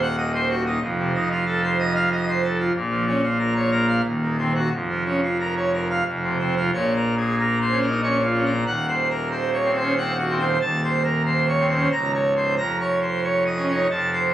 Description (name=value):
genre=classical, organ toccata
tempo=92 BPM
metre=3/4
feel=straight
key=Bb minor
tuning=A4 = 440 Hz
part: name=pipe organ, full organ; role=solo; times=0.0-14.3 s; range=Db1 to Bb5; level=-19 LUFS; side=right 1 dB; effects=none
room=wet stone room reverb, RT60 1.0 s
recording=recorded on a phone in the room, studio ambience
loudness=-19 LUFS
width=side -12 dB against mid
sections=0.0-6.7 A section; 6.7-14.3 B section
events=none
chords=0.0 Cdim/Eb; 0.8 F7; 2.7 Bbm; 4.0 Cdim/Eb; 4.7 Bbm/F; 6.1 F5; 6.7 Bbm; 8.7 Cdim/Eb; 10.6 Adim/Eb; 11.9 Bbm/Db; 12.6 Bbm/F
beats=0.18 | 0.82 1.46 2.10 | 2.74 3.39 4.04 | 4.71 5.39 6.06 | 6.73 7.38 8.03 | 8.68 9.32 9.97 | 10.62 11.26 11.92 | 12.58 13.24 13.90